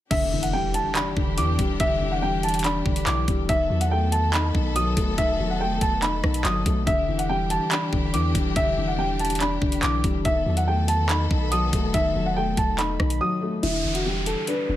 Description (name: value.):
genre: hip hop, drill.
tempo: 142 BPM.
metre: 4/4.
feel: half-time.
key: E minor.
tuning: A4 = 437 Hz.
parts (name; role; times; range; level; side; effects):
dark concert grand piano; melody; 0.1-14.8 s; E4 to D#6; -26 LUFS; right 1 dB; low-pass filter, ping-pong delay.
dark concert grand piano; accompaniment; 0.1-14.8 s; D3 to D#4; -28 LUFS; left 4 dB; low-pass filter.
warm symphonic string section; sustained chords; 0.1-13.6 s; D#3 to A4; -32 LUFS; left 1 dB; none.
long sustained 808-style bass; bass; 0.1-14.8 s; E1 to E2; -27 LUFS; equal; none.
drill drum kit; drums; 0.1-14.6 s; crash cymbal, handclaps, hi-hat, kick drum, rim click; -26 LUFS; equal; none.
impact and downlifter; sound effects; 0.1-1.8, 13.6-14.8 s; none; -32 LUFS; right 1 dB; none.
room: light reverb, small room ambience.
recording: none.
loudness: -21 LUFS.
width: side -13 dB against mid.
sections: 0.1-13.6 A section; 13.6-14.8 B section.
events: impact 0.1-1.8; drums muted 13.2-13.6.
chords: 0.1 Em7; 3.5 B7/E; 6.9 Em7; 10.3 B7/E; 13.6 Em7.